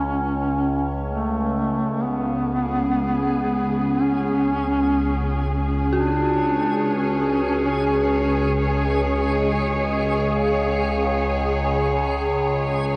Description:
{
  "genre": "dark ambient drone",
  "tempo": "free time",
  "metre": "none",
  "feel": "none",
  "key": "unclear",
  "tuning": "A4 = 440 Hz",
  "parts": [
    { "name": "warm duduk", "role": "melody", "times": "0.0-9.4 s", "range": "A3 to D4", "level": "-27 LUFS", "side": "equal", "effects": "shimmer reverb, delay" },
    { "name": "dark detuned synth bell", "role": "arpeggios", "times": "0.0-13.0 s", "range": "E4 to F#4", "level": "-34 LUFS", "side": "equal", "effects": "none" },
    { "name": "overtone-sweeping drone", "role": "drone", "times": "0.0-13.0 s", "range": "C#2", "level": "-26 LUFS", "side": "equal", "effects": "chorus, built-in reverb, phaser" },
    { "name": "rich studio cello section", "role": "sustained chords", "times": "2.0-13.0 s", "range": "C#3 to C#5", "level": "-28 LUFS", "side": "equal", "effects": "shimmer reverb" },
    { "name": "backwards swelling texture", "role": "texture", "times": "3.0-13.0 s", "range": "G#4", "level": "-32 LUFS", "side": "equal", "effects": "built-in reverb, shimmer reverb" }
  ],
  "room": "wet huge ambient reverb, RT60 7.8 s",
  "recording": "worn, warbling old tape, cassette tape, warbly pitch drift",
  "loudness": "-22 LUFS",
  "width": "mono",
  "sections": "0.0-2.0 A section; 2.0-13.0 B section",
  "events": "none",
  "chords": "0.0 C#m; 2.0 C#5",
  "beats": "free time"
}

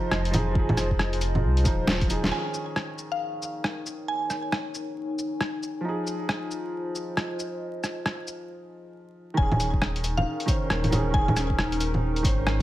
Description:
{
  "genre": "future garage",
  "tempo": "136 BPM",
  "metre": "4/4",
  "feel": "swing 63% on 16ths",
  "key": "unclear",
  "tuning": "A4 = 441 Hz",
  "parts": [
    { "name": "felt-muted upright piano", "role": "accompaniment", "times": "0.0-12.6 s", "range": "Eb3 to C5", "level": "-33 LUFS", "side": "right 2 dB", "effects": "sidechain pumping, digital delay" },
    { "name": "warbly tape-like pad", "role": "sustained chords", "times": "0.0-12.6 s", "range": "Db4 to Ab5", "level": "-34 LUFS", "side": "left 2 dB", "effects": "chorus, built-in reverb, sidechain pumping" },
    { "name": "warm sub bass", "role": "bass", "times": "0.1-2.3, 9.4-12.6 s", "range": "Eb1 to C2", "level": "-27 LUFS", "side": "equal", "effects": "tube saturation, sidechain pumping" },
    { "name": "lo-fi sampler-style drum kit", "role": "drums", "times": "0.1-12.6 s", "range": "bongos, cabasa, hi-hat, rim click, snare drum", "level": "-27 LUFS", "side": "equal", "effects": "overdrive" },
    { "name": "electronic kick drum", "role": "drums", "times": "0.6-2.1, 9.4-12.4 s", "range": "none", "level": "-26 LUFS", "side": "equal", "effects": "none" },
    { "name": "mallet-like synth pluck", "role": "melody", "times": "2.3-4.7, 9.4-11.8 s", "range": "F5 to Ab5", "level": "-31 LUFS", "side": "equal", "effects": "chorus, digital delay" }
  ],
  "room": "light reverb",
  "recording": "vinyl crackle",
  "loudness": "-24 LUFS",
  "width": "side -15 dB against mid",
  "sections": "0.0-2.3 A section; 2.3-9.4 B section; 9.4-12.6 C section",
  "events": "drum fill 1.9-2.3; band accent 2.2; break 8.5-9.4",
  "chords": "0.0 Fm7; 2.3 Eb7sus4; 5.8 Fm7; 9.4 Eb7sus4",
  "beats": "0.11 | 0.55 0.99 1.44 1.88 | 2.32 2.76 3.20 3.64 | 4.08 4.53 4.97 5.41 | 5.85 6.29 6.73 7.17 | 7.61 8.05 8.49 8.94 | 9.38 9.82 10.26 10.70 | 11.14 11.58 12.03 12.47"
}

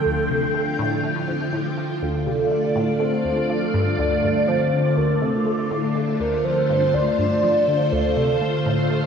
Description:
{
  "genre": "ambient, sequencer-driven space music",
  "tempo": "122 BPM",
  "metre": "4/4",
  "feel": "straight",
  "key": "D minor",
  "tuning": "A4 = 441 Hz",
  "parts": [
    { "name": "soft octave-layered synth lead", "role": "melody", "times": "0.0-8.7 s", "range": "A4 to D5", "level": "-23 LUFS", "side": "right 1 dB", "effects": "chorus, phaser, cassette tape, tape echo" },
    { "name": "phased string machine", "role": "sustained chords", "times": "0.0-9.1 s", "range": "D3 to G5", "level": "-22 LUFS", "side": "left 1 dB", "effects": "ensemble chorus, phaser, cassette tape" },
    { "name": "resonant blip pluck", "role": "riff", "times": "0.0-9.0 s", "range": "D2 to A3", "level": "-26 LUFS", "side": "equal", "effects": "phaser, cassette tape, tape echo" },
    { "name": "bubbling stepped-filter texture", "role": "texture", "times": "2.0-9.1 s", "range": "A5", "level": "-45 LUFS", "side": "equal", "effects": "none" }
  ],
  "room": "wet lush hall reverb, RT60 2.4 s",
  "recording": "home recording on cassette",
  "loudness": "-19 LUFS",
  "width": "side -7 dB against mid",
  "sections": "0.0-2.0 A section; 2.0-9.1 B section",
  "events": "none",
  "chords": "0.0 Dm",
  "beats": "| 0.05 0.54 1.03 1.53 | 2.02 2.51 3.00 3.49 | 3.99 4.48 4.97 5.46 | 5.95 6.45 6.94 7.43 | 7.92 8.41 8.90"
}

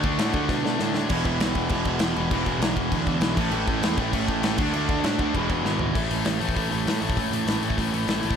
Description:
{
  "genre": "punk rock",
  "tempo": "198 BPM",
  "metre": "4/4",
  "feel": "straight",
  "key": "unclear",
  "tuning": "A4 = 442 Hz",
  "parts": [
    { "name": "cranked stack guitar", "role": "riff", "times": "0.0-8.4 s", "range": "E2 to D4", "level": "-28 LUFS", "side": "left 13 dB", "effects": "overdrive" },
    { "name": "raw garage guitar", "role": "riff", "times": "0.0-6.0 s", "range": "E2 to D4", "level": "-29 LUFS", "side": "right 1 dB", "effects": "overdrive" },
    { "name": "sludgy distorted guitar", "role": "riff", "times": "0.0-8.4 s", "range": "E2 to D4", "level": "-28 LUFS", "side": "right 10 dB", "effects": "overdrive" },
    { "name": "fuzz picked electric bass", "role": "bass", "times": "0.0-8.4 s", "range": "E1 to B2", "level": "-30 LUFS", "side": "equal", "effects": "overdrive" },
    { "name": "big rock drum kit", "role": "drums", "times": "0.0-8.4 s", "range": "crash cymbal, hi-hat, kick drum, snare drum, toms", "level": "-27 LUFS", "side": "equal", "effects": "none" }
  ],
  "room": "little or no reverb",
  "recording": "none",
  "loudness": "-22 LUFS",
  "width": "side -7 dB against mid",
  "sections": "0.0-6.0 A section; 6.0-8.4 B section",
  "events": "drum fill 0.5-1.1, 5.6-6.0",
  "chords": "0.0 D5; 1.1 E5; 3.4 A5; 4.6 D5; 5.3 E; 6.0 A5",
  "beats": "0.19 0.50 0.80 | 1.10 1.41 1.71 2.01 | 2.32 2.62 2.92 3.23 | 3.53 3.83 4.13 4.44 | 4.74 5.04 5.35 5.65 | 5.95 6.26 6.56 6.86 | 7.17 7.47 7.78 8.08"
}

